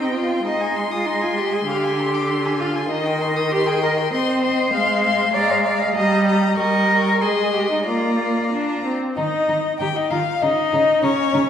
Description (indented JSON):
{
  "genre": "quick classical-period movement for string quartet",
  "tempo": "98 BPM",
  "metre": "2/4",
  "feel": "rubato",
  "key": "C minor, Eb major from 4.1 s",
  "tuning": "A4 = 440 Hz",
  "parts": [
    { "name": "rich violin", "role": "melody", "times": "0.0-11.5 s", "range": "Db5 to Db6", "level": "-25 LUFS", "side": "left 6 dB", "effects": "none" },
    { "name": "rich violin", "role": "second line", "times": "0.0-11.4 s", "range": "Eb4 to Eb6", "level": "-26 LUFS", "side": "left 4 dB", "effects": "none" },
    { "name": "rich viola", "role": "accompaniment", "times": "0.0-11.5 s", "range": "D3 to G4", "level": "-22 LUFS", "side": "right 1 dB", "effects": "none" },
    { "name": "clear cello", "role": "bass", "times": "0.0-11.4 s", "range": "Db3 to F5", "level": "-22 LUFS", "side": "right 1 dB", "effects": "none" }
  ],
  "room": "wet scoring stage reverb, RT60 1.7 s",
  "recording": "heard from further back in the room",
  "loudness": "-17 LUFS",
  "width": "side -8 dB against mid",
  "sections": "0.0-9.2 A section; 9.2-11.5 B section",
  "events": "none",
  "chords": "0.5 Ab; 1.7 Dm7b5; 2.9 Cm/Eb; 4.1 Cm; 4.7 Fm/Ab; 5.3 Bb7/Ab; 6.0 Eb/G; 6.6 Eb7/G; 7.2 Ab; 7.9 Bb; 9.2 Ebsus2; 10.4 Dbsus2"
}